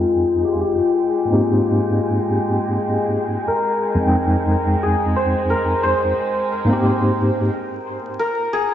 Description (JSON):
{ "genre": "trip hop", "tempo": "89 BPM", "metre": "4/4", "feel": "swing 56% on 16ths", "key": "unclear", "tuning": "A4 = 438 Hz", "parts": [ { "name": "santur", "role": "melody", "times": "0.0-8.7 s", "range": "F4 to C5", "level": "-20 LUFS", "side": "left 2 dB", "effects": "dub echo" }, { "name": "tine electric piano", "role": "accompaniment", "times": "0.0-7.5 s", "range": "F2 to G5", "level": "-19 LUFS", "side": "equal", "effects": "tremolo, low-pass filter, tape echo" }, { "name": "warm studio violin section", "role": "sustained chords", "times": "0.0-7.5 s", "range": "Ab3", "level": "-26 LUFS", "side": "equal", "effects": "vintage 12-bit sampler grit" }, { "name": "wind-like tuned noise texture", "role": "texture", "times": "0.0-7.5 s", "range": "G5", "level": "-33 LUFS", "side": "right 4 dB", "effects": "built-in reverb, lush chorus" } ], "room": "wet plate reverb, RT60 1.6 s, digital ambience", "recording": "dreamy mix soaked in reverb, vinyl crackle, low-pass filter, nothing above 7.7 kHz", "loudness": "-16 LUFS", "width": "side -10 dB against mid", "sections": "0.0-8.7 A section", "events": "filter sweep on tine electric piano 0.0-8.7; filter sweep 0.0-8.7; break 7.5-8.7", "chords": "0.0 Fm7; 0.8 Abmaj7; 3.5 Fm7; 6.2 Abmaj7" }